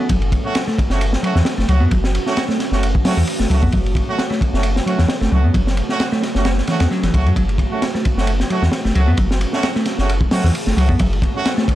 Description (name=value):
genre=breakbeat, breaks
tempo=132 BPM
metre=4/4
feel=swing 55% on 16ths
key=F# minor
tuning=A4 = 442 Hz
part: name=deep dark ambient pad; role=sustained chords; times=0.0-11.8 s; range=A3 to C#5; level=-26 LUFS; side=right 3 dB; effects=chorus, built-in reverb, sidechain pumping
part: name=picked electric bass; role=riff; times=0.0-11.7 s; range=E3 to B3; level=-23 LUFS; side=equal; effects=tube saturation, vintage 12-bit sampler grit, ping-pong delay
part: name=saturated sub bass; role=bass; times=0.1-11.3 s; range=F#1 to F#2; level=-17 LUFS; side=equal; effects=none
part: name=crunchy breakbeat drum kit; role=drums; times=0.1-11.8 s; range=hi-hat, kick drum, ride cymbal, snare drum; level=-20 LUFS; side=equal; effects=none
part: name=warm horn section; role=stabs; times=0.4-11.5 s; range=A3 to F#4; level=-25 LUFS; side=right 3 dB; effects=ping-pong delay
part: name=riser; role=sound effects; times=11.3-11.8 s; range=none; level=-29 LUFS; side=right 1 dB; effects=none
room=light reverb, small room ambience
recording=dark, warm production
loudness=-15 LUFS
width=side -14 dB against mid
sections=0.0-11.8 A section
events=riser 11.3-11.8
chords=0.0 F#m